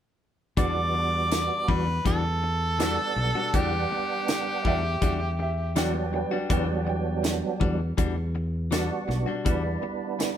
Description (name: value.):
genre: straight-eighth soul blues.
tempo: 81 BPM.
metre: 4/4.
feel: straight.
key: E minor.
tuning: A4 = 441 Hz.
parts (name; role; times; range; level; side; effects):
clear harmonica; melody; 0.6-5.8 s; G4 to D5; -28 LUFS; equal; overdrive.
percussive tonewheel organ; accompaniment; 0.6-10.4 s; F#3 to F#5; -30 LUFS; right 4 dB; slow rotary speaker, overdrive, chorus vibrato.
direct-recorded clean electric guitar; stabs; 0.6-10.2 s; E3 to F#4; -31 LUFS; left 5 dB; none.
fingered electric bass; bass; 0.6-9.8 s; B1 to E2; -29 LUFS; equal; none.
tight funk drum kit; drums; 0.6-10.4 s; hi-hat, kick drum, snare drum; -28 LUFS; equal; none.
clear upright piano; second line; 4.6-7.6 s; G4 to G5; -34 LUFS; right 1 dB; none.
room: moderate stone room reverb, RT60 1.2 s.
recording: band playing live in one room.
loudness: -24 LUFS.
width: side -10 dB against mid.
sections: 0.6-10.4 A section.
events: none.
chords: 0.6 Em9.